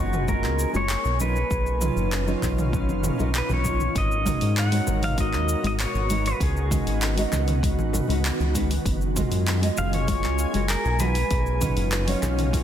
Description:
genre	sunset chillout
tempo	98 BPM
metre	4/4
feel	straight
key	G# dorian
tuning	A4 = 439 Hz
part	pedal steel guitar	melody	0.0-12.2 s	F#4 to F#5	-29 LUFS	equal	tape echo
part	nylon-string guitar	accompaniment	0.0-12.6 s	F#3 to D#5	-29 LUFS	equal	auto-pan, digital delay
part	shimmering ambient pad	sustained chords	0.0-12.6 s	A#2 to A#4	-32 LUFS	right 1 dB	chorus, built-in reverb
part	round analog bass	bass	0.0-12.6 s	F#1 to G#2	-25 LUFS	equal	none
part	deep house drum kit	drums	0.1-12.6 s	handclaps, hi-hat, shaker, toms	-30 LUFS	right 1 dB	small room ambience
part	electronic kick drum	drums	0.3-12.6 s	none	-28 LUFS	equal	small room ambience
part	congas	percussion	1.2-12.3 s	none	-34 LUFS	left 4 dB	none
room	light reverb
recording	dense, heavily limited modern master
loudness	-21 LUFS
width	side -10 dB against mid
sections	0.0-4.0 A section; 4.0-12.6 B section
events	none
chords	0.0 F#maj9; 1.2 Bmaj9#11; 4.0 G#m9; 6.4 C#9sus4; 8.9 F#maj9

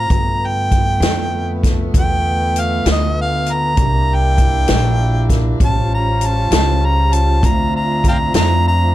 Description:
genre	slow blues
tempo	66 BPM (dotted quarters)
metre	12/8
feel	straight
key	unclear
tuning	A4 = 440 Hz
part	warm harmonica	melody	0.0-8.9 s	Eb5 to Bb5	-19 LUFS	equal	overdrive, plate reverb
part	mellow horn section	sustained chords	0.0-8.9 s	G3 to E#4	-26 LUFS	left 1 dB	plate reverb
part	mellow tonewheel organ	sustained chords	0.0-8.9 s	D3 to E5	-26 LUFS	right 1 dB	slow rotary speaker, plate reverb
part	upright bass	bass	0.0-8.9 s	A1 to G2	-17 LUFS	equal	none
part	swinging big-band drum kit	drums	0.1-8.5 s	hi-hat, kick drum, snare drum	-17 LUFS	equal	none
room	light reverb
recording	dark, warm production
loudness	-13 LUFS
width	side -14 dB against mid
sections	0.0-8.9 A section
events	harmonica solo 0.0-8.9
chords	0.1 G9; 3.8 C9; 5.6 A7alt; 7.4 Dm7

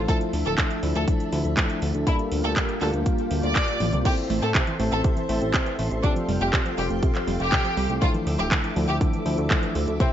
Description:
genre	italo disco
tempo	121 BPM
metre	4/4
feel	straight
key	D minor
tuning	A4 = 440 Hz
part	string machine, full ensemble	sustained chords	0.0-10.1 s	Bb3 to E6	-31 LUFS	equal	ensemble chorus
part	tine electric piano	stabs	0.0-10.1 s	F3 to E5	-30 LUFS	left 3 dB	none
part	fat analog bass	bass	0.0-10.0 s	D1 to A2	-26 LUFS	equal	none
part	clear studio violin section	melody	0.1-10.1 s	C4 to D5	-29 LUFS	equal	ping-pong delay
part	electronic kick drum	drums	0.1-10.1 s	none	-24 LUFS	equal	none
part	house drum kit	drums	0.1-10.1 s	crash cymbal, handclaps, hi-hat, toms	-28 LUFS	right 1 dB	gated reverb
part	analog pluck	arpeggios	4.1-10.0 s	C3 to C4	-31 LUFS	right 4 dB	chorus, ping-pong delay
room	digital ambience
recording	nothing above 7.7 kHz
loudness	-21 LUFS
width	side -10 dB against mid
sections	0.0-4.1 A section; 4.1-10.1 B section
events	drum fill 3.8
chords	0.1 Dmadd9; 2.1 Gm7/D; 4.1 Am; 6.0 Fadd9; 8.0 Dmadd9

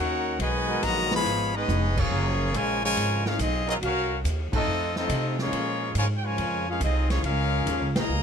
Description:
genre	jazz, big band swing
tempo	140 BPM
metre	4/4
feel	swing 67% on 8ths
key	Bb minor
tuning	A4 = 439 Hz
part	brilliant trumpet section	melody	0.0-8.2 s	Bb3 to Cb6	-27 LUFS	left 2 dB	none
part	clear trombone section	second line	0.0-8.2 s	Cb3 to Gb4	-31 LUFS	equal	none
part	upright bass	bass	0.0-8.2 s	F1 to C3	-28 LUFS	right 1 dB	none
part	swinging big-band drum kit	drums	0.4-8.0 s	crash cymbal, hi-hat, kick drum, ride cymbal, snare drum, toms	-32 LUFS	equal	none
part	clear trombone section	sustained chords	0.7-4.6, 7.7-7.9 s	F3 to Bb4	-36 LUFS	equal	none
room	little or no reverb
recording	none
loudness	-23 LUFS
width	side -7 dB against mid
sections	0.0-8.2 A section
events	drum fill 1.7-2.1; band accent 1.9, 4.5, 7.9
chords	0.4 Abm9; 1.2 Db7; 2.1 Gbmaj9; 3.8 Cm7b5; 4.7 F7b13; 5.5 Bbm7

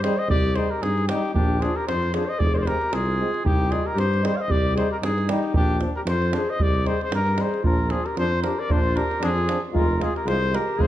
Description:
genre	balkan folk, Balkan brass band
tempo	114 BPM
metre	2/4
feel	swing 55% on 16ths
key	unclear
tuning	A4 = 439 Hz
part	mellow trumpet	melody	0.0-10.9 s	G4 to F5	-26 LUFS	left 1 dB	none
part	warm clarinet	second line	0.0-10.9 s	D4 to D5	-28 LUFS	left 4 dB	none
part	brilliant trombone	accompaniment	0.0-10.9 s	C4 to F4	-33 LUFS	left 4 dB	none
part	clear euphonium	accompaniment	0.0-10.9 s	F3 to Ab3	-32 LUFS	right 4 dB	none
part	mellow tuba	bass	0.0-10.9 s	F1 to G2	-26 LUFS	equal	none
part	davul	percussion	0.0-10.9 s	none	-26 LUFS	right 1 dB	none
room	moderate recital hall reverb, RT60 1.4 s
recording	dark, warm production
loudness	-20 LUFS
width	side -13 dB against mid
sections	0.0-7.6 A section; 7.6-10.9 B section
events	none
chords	0.0 Cm; 1.4 Bb; 2.4 Fm; 3.4 Cm; 5.5 Bb; 6.6 Cm; 7.6 Bb; 9.7 Fm

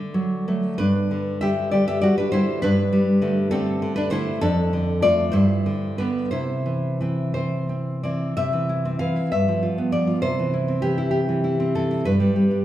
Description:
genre	romantic piece for solo classical guitar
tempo	58-69 BPM (dotted quarters)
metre	6/8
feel	rubato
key	C major from 4.4 s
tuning	A4 = 441 Hz
part	nylon-string guitar	solo	0.0-12.6 s	F2 to F5	-20 LUFS	equal	none
room	wet recital hall reverb, RT60 1.5 s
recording	heard from further back in the room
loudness	-20 LUFS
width	side -13 dB against mid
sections	0.0-8.4 A section; 8.4-12.6 B section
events	none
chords	0.0 D; 0.8 G; 2.6 D5/G; 4.4 Dm/F; 5.3 G; 6.3 C; 9.3 G7; 10.2 C; 12.1 G

